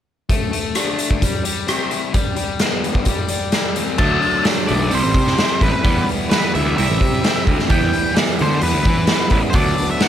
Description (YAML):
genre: indie rock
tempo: 130 BPM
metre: 4/4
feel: straight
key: D mixolydian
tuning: A4 = 440 Hz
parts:
  - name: fuzz guitar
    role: riff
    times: 0.3-10.1 s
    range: F#3 to E4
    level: -24 LUFS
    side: left 6 dB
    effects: distortion
  - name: raw garage drum kit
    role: drums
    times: 0.3-10.1 s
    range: crash cymbal, hi-hat, kick drum, rim click, snare drum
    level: -18 LUFS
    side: equal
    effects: none
  - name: octave-fuzz lead guitar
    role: melody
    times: 4.0-10.1 s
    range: B4 to A5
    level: -22 LUFS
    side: left 1 dB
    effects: distortion, tape echo
  - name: clean electric guitar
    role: riff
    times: 4.0-10.1 s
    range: C3 to E4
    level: -23 LUFS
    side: right 8 dB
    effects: lush chorus
  - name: fuzz picked electric bass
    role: bass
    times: 4.0-9.7 s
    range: A1 to E3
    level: -20 LUFS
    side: equal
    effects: overdrive
room: little or no reverb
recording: none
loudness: -15 LUFS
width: side -10 dB against mid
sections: 0.3-4.0 A section; 4.0-10.1 B section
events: none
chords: 0.3 D5; 1.2 C; 2.1 G; 3.1 C5; 4.0 D; 4.9 C; 5.8 Em; 6.8 C; 7.7 Em; 9.5 Bm/D